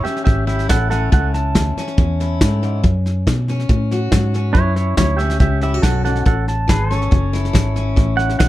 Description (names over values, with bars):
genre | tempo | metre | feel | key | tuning
honky-tonk and classic country | 140 BPM | 4/4 | straight | A major | A4 = 440 Hz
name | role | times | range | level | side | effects
pedal steel guitar | second line | 0.0-8.5 s | E4 to A5 | -22 LUFS | right 4 dB | none
picked steel-string acoustic guitar | accompaniment | 0.0-8.5 s | E2 to F#4 | -23 LUFS | left 4 dB | none
vintage muted fingered electric bass | bass | 0.0-8.5 s | F#1 to B2 | -18 LUFS | equal | none
soft brush drum kit | drums | 0.1-8.5 s | hi-hat, kick drum, snare drum | -17 LUFS | equal | none
pedal steel guitar | sustained chords | 6.7-8.5 s | A4 to C#5 | -27 LUFS | equal | none
room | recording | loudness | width
little or no reverb | dark, warm production | -14 LUFS | side -15 dB against mid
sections
0.0-8.5 A section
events
pedal steel guitar solo 0.0-8.5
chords
0.0 A; 2.8 F#m; 6.3 A